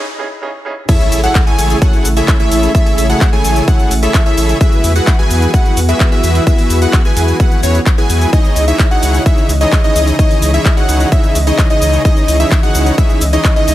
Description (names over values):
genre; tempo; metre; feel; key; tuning
EDM, festival progressive house; 129 BPM; 4/4; straight; unclear; A4 = 439 Hz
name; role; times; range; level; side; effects
clear baby grand piano; accompaniment; 0.2-0.7 s; C#3 to G#4; -24 LUFS; right 2 dB; sidechain pumping, digital delay
lush unison pad; sustained chords; 1.2-13.7 s; C#3 to D#5; -21 LUFS; equal; chorus, sidechain pumping
plucky unison lead; arpeggios; 0.9-13.7 s; C#5 to G#5; -18 LUFS; equal; sidechain pumping, digital delay
dense compressed supersaw; riff; 0.9-13.7 s; D#4 to G#5; -18 LUFS; equal; sidechain pumping, digital delay
big-room dance drum kit; drums; 0.9-13.7 s; crash cymbal, handclaps, hi-hat, shaker; -21 LUFS; left 1 dB; overdrive
electronic kick drum; drums; 0.9-13.5 s; none; -11 LUFS; equal; overdrive
impact; sound effects; 0.9-2.7 s; none; -26 LUFS; left 1 dB; none
saturated sub bass; bass; 1.1-13.7 s; A1 to E2; -14 LUFS; equal; sidechain pumping, high-pass filter
room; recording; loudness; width
little or no reverb; high-pass filter; -9 LUFS; side -14 dB against mid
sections
0.9-13.7 A section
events
break 0.0-0.9; drop 0.9-13.7; impact 0.9-2.7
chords
0.0 C#madd9; 0.9 Amaj7; 4.6 Eadd9; 8.3 C#madd9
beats
0.42 | 0.89 1.35 1.82 2.28 | 2.75 3.21 3.68 4.14 | 4.61 5.07 5.54 6.00 | 6.47 6.93 7.40 7.86 | 8.33 8.79 9.26 9.72 | 10.19 10.65 11.12 11.59 | 12.05 12.52 12.98 13.45